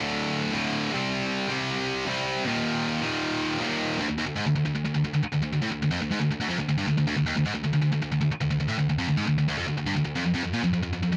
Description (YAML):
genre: metal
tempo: 156 BPM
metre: 4/4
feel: straight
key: unclear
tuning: A4 = 441 Hz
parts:
  - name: high-gain distorted guitar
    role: solo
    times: 0.0-11.2 s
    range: D2 to C4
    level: -26 LUFS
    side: equal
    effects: distortion
room: light reverb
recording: dark, warm production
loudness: -27 LUFS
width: mono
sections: 0.0-4.0 A section; 4.0-11.2 B section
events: none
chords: 0.0 D5; 0.9 C5; 2.5 Eb5; 4.0 N.C.; 10.2 F5